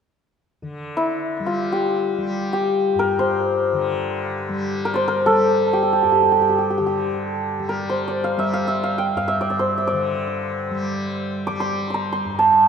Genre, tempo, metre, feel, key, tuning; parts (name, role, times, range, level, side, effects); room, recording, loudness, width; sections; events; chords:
indian classical, Hindustani; free time; G raga bhimpalasi; A4 = 440 Hz
tanpura; drone; 0.6-12.7 s; G2 to G3; -26 LUFS; equal
santur; melody; 1.0-12.7 s; E4 to D6; -19 LUFS; equal; tape echo
wet scoring stage reverb, RT60 1.7 s; dark, warm production; -19 LUFS; side -7 dB against mid
0.6-12.7 A section